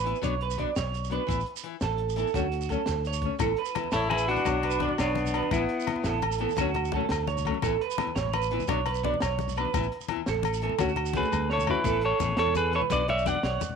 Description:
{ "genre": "highlife guitar band", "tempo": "114 BPM (dotted quarters)", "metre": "12/8", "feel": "straight", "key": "A major", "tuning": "A4 = 444 Hz", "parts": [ { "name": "nylon-string guitar", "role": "accompaniment", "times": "0.0-13.4 s", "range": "E3 to F#4", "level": "-33 LUFS", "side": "left 14 dB", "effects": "none" }, { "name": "electric guitar through a small old amp", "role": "arpeggios", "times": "0.0-13.6 s", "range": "A3 to D5", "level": "-30 LUFS", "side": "right 13 dB", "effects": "analog chorus, slapback echo" }, { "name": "fingered electric bass", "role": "bass", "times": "0.0-13.6 s", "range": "A1 to E2", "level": "-32 LUFS", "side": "left 1 dB", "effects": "none" }, { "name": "crunchy breakbeat drum kit", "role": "drums", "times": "0.1-13.7 s", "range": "crash cymbal, hi-hat, kick drum, snare drum, toms", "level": "-36 LUFS", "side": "left 1 dB", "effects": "none" }, { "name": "shekere", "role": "percussion", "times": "0.2-13.7 s", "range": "none", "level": "-40 LUFS", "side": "right 5 dB", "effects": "none" }, { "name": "agogo bells", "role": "percussion", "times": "3.4-11.8 s", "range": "none", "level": "-35 LUFS", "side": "left 13 dB", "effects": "none" }, { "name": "congas", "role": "percussion", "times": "3.4-13.8 s", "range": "none", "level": "-37 LUFS", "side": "left 10 dB", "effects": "none" }, { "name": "clean electric guitar", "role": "melody", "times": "3.9-6.2, 11.2-13.8 s", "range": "B3 to F#5", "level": "-27 LUFS", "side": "left 2 dB", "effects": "none" }, { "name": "raspy tenor saxophone", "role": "second line", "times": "3.9-6.2 s", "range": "B3 to E4", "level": "-34 LUFS", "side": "left 14 dB", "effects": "none" } ], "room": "light reverb, small room ambience", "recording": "1960s-style stereo with parts hard left and right", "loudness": "-25 LUFS", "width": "side -6 dB against mid", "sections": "0.0-11.9 A section; 11.9-13.8 B section", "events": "drum fill 11.3-11.9", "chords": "0.2 Bm; 1.3 Asus2; 2.4 Dmaj7; 3.4 Asus2; 4.5 Bm; 5.5 Asus2; 6.6 Dmaj7; 7.6 Asus2; 8.7 Bm; 9.7 Asus2; 10.8 Dmaj7; 11.9 Asus2; 12.9 Bm" }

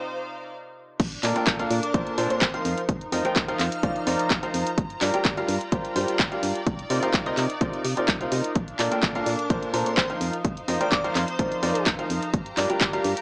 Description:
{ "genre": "piano house", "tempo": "127 BPM", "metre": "4/4", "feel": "straight", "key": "unclear", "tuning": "A4 = 435 Hz", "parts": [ { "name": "clear baby grand piano", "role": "riff", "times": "0.0-13.1 s", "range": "Bb2 to G5", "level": "-30 LUFS", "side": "equal", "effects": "sidechain pumping" }, { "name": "bright symphonic string section", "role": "texture", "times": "0.0-13.2 s", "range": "D4 to Bb5", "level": "-36 LUFS", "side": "equal", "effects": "sidechain pumping" }, { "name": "organ-like FM bass", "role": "bass", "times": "1.0-13.1 s", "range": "F1 to C3", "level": "-33 LUFS", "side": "equal", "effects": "sidechain pumping" }, { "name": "electronic kick drum", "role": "drums", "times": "1.0-12.9 s", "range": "none", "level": "-28 LUFS", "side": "equal", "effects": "none" }, { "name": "house drum kit", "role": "drums", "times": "1.0-13.2 s", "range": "crash cymbal, handclaps, hi-hat", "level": "-30 LUFS", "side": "equal", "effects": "none" }, { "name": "airy dreamy lead", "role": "melody", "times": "1.7-4.3, 9.3-11.8 s", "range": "C5 to F5", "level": "-34 LUFS", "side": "equal", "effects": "chorus, tape echo" } ], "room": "light reverb, digital ambience", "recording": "small speaker sound", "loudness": "-25 LUFS", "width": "mono", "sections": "1.0-13.2 A section", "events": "break 0.5-1.0; drop 1.0-13.2", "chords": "0.0 Cm11; 1.0 Bbmaj7; 2.6 F7sus4; 4.8 Gm7; 6.7 Cm11; 8.6 Bbmaj7; 10.2 F7sus4; 12.3 Gm7" }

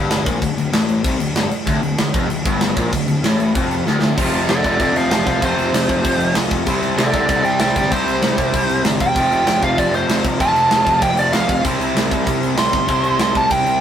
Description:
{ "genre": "punk rock", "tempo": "193 BPM", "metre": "4/4", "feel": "straight", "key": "unclear", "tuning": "A4 = 439 Hz", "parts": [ { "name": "sludgy distorted guitar", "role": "riff", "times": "0.0-13.8 s", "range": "D2 to C4", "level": "-22 LUFS", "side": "left 6 dB", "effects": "overdrive" }, { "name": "fuzz picked electric bass", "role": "bass", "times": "0.0-13.8 s", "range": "D1 to C2", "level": "-24 LUFS", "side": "equal", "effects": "overdrive" }, { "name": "tight metal drum kit", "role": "drums", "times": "0.1-13.7 s", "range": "crash cymbal, kick drum, snare drum", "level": "-20 LUFS", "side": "right 1 dB", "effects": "none" }, { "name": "overdriven semi-hollow guitar", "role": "riff", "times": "1.7-13.8 s", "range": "D2 to C5", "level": "-22 LUFS", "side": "right 3 dB", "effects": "none" }, { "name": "biting lead guitar", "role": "melody", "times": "4.5-13.8 s", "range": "A4 to C6", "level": "-18 LUFS", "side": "right 1 dB", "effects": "overdrive" } ], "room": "light reverb", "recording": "rough rehearsal-room recording", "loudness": "-15 LUFS", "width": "side -9 dB against mid", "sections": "0.0-4.2 A section; 4.2-13.8 B section", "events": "drum fill 3.9-4.2; lead electric guitar solo 4.2-13.8", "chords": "0.0 Dm; 4.2 F; 6.7 C; 9.2 F; 11.6 C" }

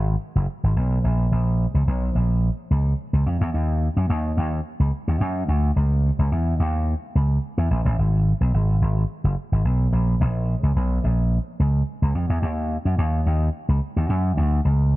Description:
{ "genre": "funk", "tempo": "108 BPM", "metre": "4/4", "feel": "straight", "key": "unclear", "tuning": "A4 = 440 Hz", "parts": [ { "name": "slap bass with an envelope filter", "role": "solo", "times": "0.0-15.0 s", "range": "F#1 to F#2", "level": "-19 LUFS", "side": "equal", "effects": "none" } ], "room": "little or no reverb", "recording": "dry, close 1970s-style studio recording", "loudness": "-20 LUFS", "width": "side -18 dB against mid", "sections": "0.0-15.0 A section", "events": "none", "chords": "none" }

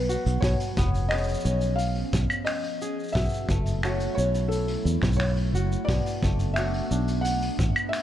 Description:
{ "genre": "folktronica", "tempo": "88 BPM", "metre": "4/4", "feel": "straight", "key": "B minor", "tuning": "A4 = 440 Hz", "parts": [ { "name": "felt-muted upright piano", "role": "melody", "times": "0.0-8.0 s", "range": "A4 to F#5", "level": "-32 LUFS", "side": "left 1 dB", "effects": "ping-pong delay" }, { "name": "warbly tape-like pad", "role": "sustained chords", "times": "0.0-8.0 s", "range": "E#3 to E4", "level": "-34 LUFS", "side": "right 1 dB", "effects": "chorus, built-in reverb" }, { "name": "kora", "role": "arpeggios", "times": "0.0-8.0 s", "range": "B2 to G#4", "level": "-33 LUFS", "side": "equal", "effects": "ping-pong delay" }, { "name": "fingered electric bass", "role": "bass", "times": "0.0-7.7 s", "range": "E#1 to E2", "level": "-26 LUFS", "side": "equal", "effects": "none" }, { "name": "vintage brush drum kit", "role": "drums", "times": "0.1-8.0 s", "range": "claves, finger snaps, hi-hat, shaker", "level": "-34 LUFS", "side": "equal", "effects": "none" }, { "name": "kick drum", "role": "drums", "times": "0.4-7.7 s", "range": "none", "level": "-27 LUFS", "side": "equal", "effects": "none" } ], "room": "light reverb, small room ambience", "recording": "dark, warm production", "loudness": "-23 LUFS", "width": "side -12 dB against mid", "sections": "0.0-8.0 A section", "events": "none", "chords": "0.4 C#7; 3.2 F#m7; 5.9 Bm7" }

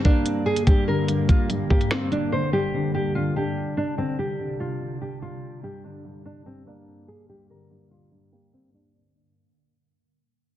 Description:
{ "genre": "hip hop, drill", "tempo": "145 BPM", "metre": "4/4", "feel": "half-time", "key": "unclear", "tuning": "A4 = 442 Hz", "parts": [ { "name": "nylon-string guitar", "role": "melody", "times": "0.0-8.9 s", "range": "C4 to C5", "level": "-27 LUFS", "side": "right 1 dB", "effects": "digital delay" }, { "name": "felt-muted upright piano", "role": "accompaniment", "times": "0.0-9.0 s", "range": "G2 to D4", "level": "-28 LUFS", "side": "left 2 dB", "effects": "none" }, { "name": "granular cloud pad", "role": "sustained chords", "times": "0.3-8.9 s", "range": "G2 to D4", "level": "-32 LUFS", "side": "equal", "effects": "built-in reverb" }, { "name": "drill drum kit", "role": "drums", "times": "0.0-2.2 s", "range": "finger snaps, hi-hat, kick drum, snare drum", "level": "-19 LUFS", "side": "equal", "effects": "vintage 12-bit sampler grit, soft clipping on snare" } ], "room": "light reverb, studio reverb", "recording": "dense, heavily limited modern master, low-pass filter", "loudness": "-21 LUFS", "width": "side -12 dB against mid", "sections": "0.0-8.9 A section", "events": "fade-out 0.0-8.9; filter sweep 0.0-8.9", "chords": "0.0 Gm; 2.3 Csus2; 5.6 Gm" }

